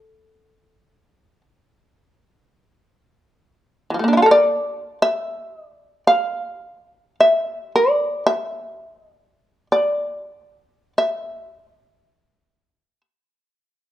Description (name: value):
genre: japanese traditional, Japanese chamber music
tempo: free time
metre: none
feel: none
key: unclear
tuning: A4 = 440 Hz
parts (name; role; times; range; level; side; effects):
- shamisen; solo; 0.0-13.0 s; E3 to F5; -16 LUFS; equal; none
room: moderate recital hall reverb, RT60 1.4 s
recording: close, detailed microphones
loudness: -17 LUFS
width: side -13 dB against mid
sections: 0.0-13.9 A section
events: none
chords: none